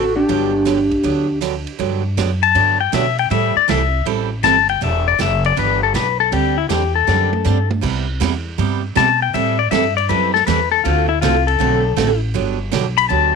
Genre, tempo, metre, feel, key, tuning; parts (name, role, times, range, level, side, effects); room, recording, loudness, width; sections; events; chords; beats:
country, western swing; 159 BPM; 4/4; swing 66% on 8ths; G major; A4 = 440 Hz
clean lap steel guitar; melody; 0.0-1.4 s; D4 to A4; -18 LUFS; equal; tape echo
breathy clarinet; second line; 0.0-1.4 s; D4 to F#4; -26 LUFS; right 12 dB
picked steel-string acoustic guitar; accompaniment; 0.0-13.3 s; C3 to A4; -21 LUFS; right 15 dB
upright bass; bass; 0.0-13.4 s; E1 to B2; -20 LUFS; equal
vintage drum kit; drums; 0.3-13.0 s; crash cymbal, hi-hat, kick drum, ride cymbal, snare drum, toms; -28 LUFS; right 8 dB
pedal steel guitar; second line; 2.4-13.3 s; E4 to B5; -16 LUFS; left 14 dB
light reverb, small room reverb; 1960s-style stereo with parts hard left and right; -14 LUFS; side -5 dB against mid
0.0-1.8 A section; 1.8-13.4 B section
pedal steel guitar solo 1.8-13.4; drum fill 7.1-7.8
0.3 Gmaj7; 3.3 Am7; 4.8 Em7; 6.3 D7sus4; 7.8 Cmaj7; 9.3 Am7; 10.8 D6; 12.4 Gmaj7
| 0.29 0.67 1.04 1.42 | 1.80 2.17 2.55 2.93 | 3.30 3.68 4.06 4.43 | 4.81 5.19 5.57 5.94 | 6.32 6.70 7.08 7.45 | 7.83 8.21 8.59 8.96 | 9.34 9.72 10.09 10.47 | 10.85 11.22 11.60 11.98 | 12.35 12.73 13.11